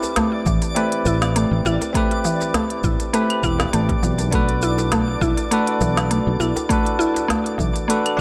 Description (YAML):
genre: organic downtempo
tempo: 101 BPM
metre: 4/4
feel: swing 54% on 16ths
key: A dorian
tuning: A4 = 441 Hz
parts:
  - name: bell-like tine electric piano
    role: accompaniment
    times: 0.0-8.2 s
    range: C4 to B4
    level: -26 LUFS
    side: equal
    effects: sidechain pumping, delay
  - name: mallet-like synth pluck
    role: arpeggios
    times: 0.0-8.2 s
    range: E3 to E4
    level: -25 LUFS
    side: equal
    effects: subtle chorus, cassette tape, delay
  - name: organic electronic drum kit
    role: drums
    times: 0.0-8.2 s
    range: claves, hi-hat, shaker, snare drum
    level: -29 LUFS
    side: equal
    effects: none
  - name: djembe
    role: percussion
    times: 0.0-7.9 s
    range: none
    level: -33 LUFS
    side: equal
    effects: none
  - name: twinkling granular texture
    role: texture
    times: 0.0-8.2 s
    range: D5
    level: -34 LUFS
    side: equal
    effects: built-in reverb
  - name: sustaining fretless electric bass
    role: bass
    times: 0.5-8.2 s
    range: E1 to B1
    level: -24 LUFS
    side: equal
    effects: ensemble chorus, sidechain pumping
  - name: electronic kick drum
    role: drums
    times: 0.5-8.2 s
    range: none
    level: -26 LUFS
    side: equal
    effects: none
room: moderate lush hall reverb, RT60 1.8 s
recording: none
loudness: -20 LUFS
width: mono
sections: 0.0-8.2 A section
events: none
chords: 0.0 Am9; 4.3 Bm7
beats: 0.17 0.76 1.36 | 1.95 2.55 3.14 3.73 | 4.33 4.92 5.52 6.11 | 6.71 7.30 7.89